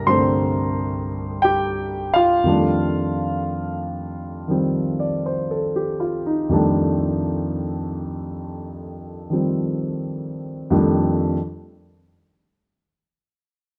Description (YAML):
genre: solo jazz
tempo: 59 BPM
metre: 4/4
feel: swing 68% on 8ths, rubato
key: F mixolydian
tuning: A4 = 440 Hz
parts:
  - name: warm concert grand piano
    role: solo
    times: 0.0-11.4 s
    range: C2 to C6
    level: -22 LUFS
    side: equal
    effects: none
room: moderate large studio reverb, RT60 1.4 s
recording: close, detailed microphones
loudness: -22 LUFS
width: mono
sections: 0.0-10.7 A section; 10.7-13.8 B section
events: none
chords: 0.0 Csus2; 2.5 F13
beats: 0.42 1.44 | 2.46 3.48 4.49 5.51 | 6.53 7.55 8.59 9.65 | 10.71